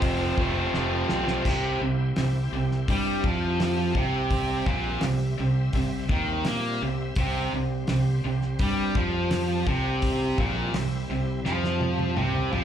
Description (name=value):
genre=classic rock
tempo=84 BPM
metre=4/4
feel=straight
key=C mixolydian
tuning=A4 = 440 Hz
part: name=overdriven slide guitar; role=melody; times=0.0-0.7 s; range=C5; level=-39 LUFS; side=left 6 dB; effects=none
part: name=bright tonewheel organ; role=sustained chords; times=0.0-12.6 s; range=G3 to E5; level=-35 LUFS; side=left 3 dB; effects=slow rotary speaker, overdrive, chorus vibrato, plate reverb
part: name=overdriven electric guitar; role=riff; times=0.0-12.6 s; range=F2 to C4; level=-28 LUFS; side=right 6 dB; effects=slapback echo
part: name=tight distorted guitar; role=riff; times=0.0-12.6 s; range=F2 to F4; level=-31 LUFS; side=left 11 dB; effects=distortion
part: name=growling fingered electric bass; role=bass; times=0.0-12.6 s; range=F1 to Bb2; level=-29 LUFS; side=equal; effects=overdrive
part: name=cloth-damped thuddy drum kit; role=drums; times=0.0-12.6 s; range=crash cymbal, hi-hat, kick drum, snare drum, toms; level=-29 LUFS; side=left 1 dB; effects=none
room=moderate club reverb, RT60 0.5 s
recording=live gig heard through the venue's PA, club reverb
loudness=-23 LUFS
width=side -9 dB against mid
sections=0.0-1.5 A section; 1.5-12.6 B section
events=drum fill 0.7-1.5, 11.5-12.6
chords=0.0 F; 1.5 C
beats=0.03 0.74 | 1.46 2.17 2.89 3.60 | 4.32 5.03 5.75 6.46 | 7.18 7.89 8.61 9.32 | 10.04 10.75 11.46 12.17